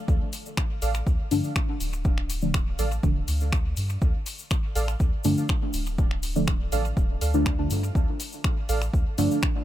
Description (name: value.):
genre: dub techno.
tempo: 122 BPM.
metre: 4/4.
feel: straight.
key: D minor.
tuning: A4 = 439 Hz.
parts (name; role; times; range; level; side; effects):
soft dub sub bass; bass; 0.1-9.3 s; D1 to G2; -28 LUFS; equal; sidechain pumping.
electronic kick drum; drums; 0.1-9.5 s; none; -25 LUFS; equal; none.
cabasa; percussion; 0.1-9.5 s; none; -39 LUFS; left 4 dB; none.
punchy analog drum machine; drums; 0.3-9.5 s; finger snaps, hi-hat; -34 LUFS; left 2 dB; dub echo.
warbly lo-fi synth keys; riff; 0.8-8.8 s; A4 to F5; -36 LUFS; right 5 dB; chorus, sidechain pumping, dub echo.
deep mellow chord stab; stabs; 1.3-9.4 s; D3 to D4; -28 LUFS; equal; chorus, phaser, dub echo.
room: digital ambience.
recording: none.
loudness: -23 LUFS.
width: side -13 dB against mid.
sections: 0.1-9.6 A section.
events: none.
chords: 0.1 Dm.